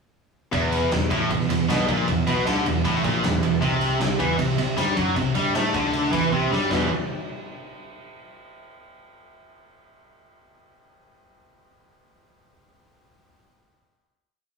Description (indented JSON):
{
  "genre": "hard rock",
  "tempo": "155 BPM",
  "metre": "4/4",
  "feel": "straight",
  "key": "E minor",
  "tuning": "A4 = 439 Hz",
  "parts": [
    { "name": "heavy high-gain guitar", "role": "riff", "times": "0.5-6.9 s", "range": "E2 to A3", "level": "-26 LUFS", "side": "right 8 dB", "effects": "distortion" },
    { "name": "high-gain distorted guitar", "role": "riff", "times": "0.5-6.9 s", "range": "E2 to A3", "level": "-24 LUFS", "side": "left 5 dB", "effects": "distortion" },
    { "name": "picked electric bass", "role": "bass", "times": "0.5-6.9 s", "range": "E1 to A2", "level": "-28 LUFS", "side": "right 2 dB", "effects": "none" },
    { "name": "big rock drum kit", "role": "drums", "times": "0.5-6.8 s", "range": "china cymbal, kick drum, ride cymbal, snare drum", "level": "-27 LUFS", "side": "right 1 dB", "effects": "none" }
  ],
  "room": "wet studio reverb, RT60 0.6 s",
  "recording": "rough rehearsal-room recording, warm saturation, small room reverb",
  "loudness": "-20 LUFS",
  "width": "side -4 dB against mid",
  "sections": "0.5-6.7 riff; 6.7-8.3 final chord",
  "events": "drum fill 6.3-6.7",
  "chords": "0.5 E5; 3.6 C5; 6.7 E5"
}